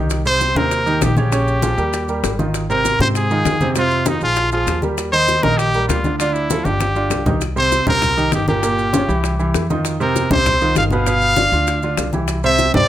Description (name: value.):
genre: latin, salsa.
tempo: 197 BPM.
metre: 4/4.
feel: straight.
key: C minor.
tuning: A4 = 440 Hz.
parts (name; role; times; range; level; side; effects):
clear grand piano; accompaniment; 0.0-12.9 s; Bb2 to Eb5; -20 LUFS; right 2 dB; none.
upright bass; bass; 0.0-12.9 s; G1 to Ab2; -22 LUFS; equal; none.
bongos; percussion; 0.1-12.7 s; none; -26 LUFS; left 10 dB; none.
congas; percussion; 0.1-12.9 s; none; -22 LUFS; left 2 dB; none.
maracas; percussion; 0.1-12.9 s; none; -31 LUFS; right 10 dB; none.
bright trumpet; melody; 0.3-12.9 s; Eb4 to F5; -18 LUFS; equal; none.
room: light reverb.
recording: close, detailed microphones.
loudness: -15 LUFS.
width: side -12 dB against mid.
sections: 0.0-7.4 A section; 7.4-12.9 A section.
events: drum fill 6.7-7.4.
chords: 0.1 Cm7; 1.3 Bbm7; 1.9 Ebadd9; 2.5 Ab69; 3.8 Fm7; 4.4 Bb5; 5.0 Eb69; 6.2 Dmadd9; 6.8 G5; 7.4 Cm7; 8.6 Gm7b5; 9.2 C; 9.9 F5; 11.1 G7; 12.3 Cadd9.